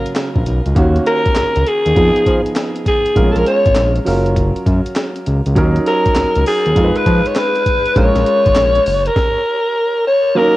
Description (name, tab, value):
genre	R&B, new jack swing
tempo	100 BPM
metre	4/4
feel	swing 65% on 16ths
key	Eb minor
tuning	A4 = 440 Hz
part	growling alto saxophone	melody	0.0-10.6 s	Ab4 to Db5	-15 LUFS	left 1 dB	cassette tape, tape echo
part	warm baby grand piano	accompaniment	0.0-10.6 s	Db3 to Cb5	-19 LUFS	right 1 dB	cassette tape
part	breakbeat sampler-style drum kit	drums	0.1-9.3 s	handclaps, hi-hat, kick drum, snare drum	-18 LUFS	equal	cassette tape
part	smooth synth bass	bass	0.4-9.1 s	Gb1 to F3	-16 LUFS	equal	none
room	light reverb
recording	home recording on cassette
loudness	-12 LUFS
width	side -16 dB against mid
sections	0.8-10.4 A section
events	stop 9.2-10.4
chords	0.0 Gbmaj7; 0.8 Ebm7; 2.0 Fm7b5; 3.2 Bbm7; 4.1 Gbmaj7; 5.6 Ebm7; 6.8 Fm7b5; 8.0 Bbm7; 8.9 Gb